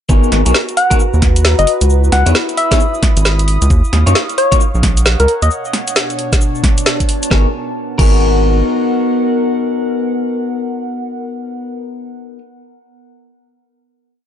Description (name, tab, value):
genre	UK garage, two-step garage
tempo	133 BPM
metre	4/4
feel	swing 62% on 16ths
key	G# minor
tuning	A4 = 439 Hz
part	electric guitar at the edge of break-up	stabs	0.1-12.4 s	A#3 to C#5	-18 LUFS	left 4 dB	dub echo
part	rubbery square bass	bass	0.1-8.6 s	F#1 to F#2	-12 LUFS	equal	tube saturation
part	electronic kick drum	drums	0.1-8.1 s	none	-13 LUFS	equal	none
part	garage drum kit	drums	0.1-8.1 s	cabasa, crash cymbal, hi-hat, snare drum	-17 LUFS	equal	none
part	warbly tape-like pad	texture	0.6-11.7 s	B2 to D#6	-22 LUFS	right 1 dB	chorus, built-in reverb, phaser, sidechain pumping
part	soft struck synth lead	melody	0.8-5.5 s	A#4 to F#5	-16 LUFS	left 2 dB	chorus, phaser, dub echo
room	little or no reverb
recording	nothing above 10.8 kHz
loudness	-11 LUFS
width	side -9 dB against mid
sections	0.1-7.3 drop; 7.3-10.9 final chord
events	drop 0.1-7.3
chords	0.1 G#m9; 1.7 C#m9; 3.7 D#m9; 5.5 Bm9; 7.3 G#m9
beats	| 0.09 0.55 1.00 1.45 | 1.90 2.35 2.80 3.25 | 3.70 4.15 4.61 5.06 | 5.51 5.96 6.41 6.86 | 7.31 7.76 8.21 8.66 | 9.12 9.57 10.02 10.47